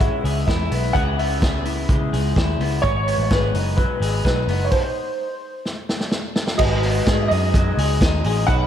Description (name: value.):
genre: jangly indie pop.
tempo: 127 BPM.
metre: 4/4.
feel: straight.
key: unclear.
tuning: A4 = 440 Hz.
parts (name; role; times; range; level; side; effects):
warm upright piano; melody; 0.0-8.7 s; B4 to F#5; -25 LUFS; right 1 dB; lush chorus, analog delay.
electric guitar through a small old amp; arpeggios; 0.0-8.7 s; G#2 to B4; -25 LUFS; left 3 dB; lush chorus, analog delay.
vintage muted picked electric bass; bass; 0.0-8.7 s; F#1 to C#3; -22 LUFS; equal; none.
vintage drum kit; drums; 0.0-8.6 s; crash cymbal, hi-hat, kick drum, ride cymbal, snare drum; -22 LUFS; equal; none.
reed electric piano; accompaniment; 6.6-8.7 s; D#4 to C#5; -29 LUFS; right 6 dB; none.
room: moderate plate reverb, RT60 1.7 s, small room ambience.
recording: dreamy mix soaked in reverb.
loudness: -18 LUFS.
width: side -10 dB against mid.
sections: 0.0-6.6 A section; 6.6-8.7 B section.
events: stop 4.7-6.6; drum fill 5.7-6.6.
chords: 0.0 C#m7; 2.8 G#m7; 4.7 N.C.; 6.6 G#m7.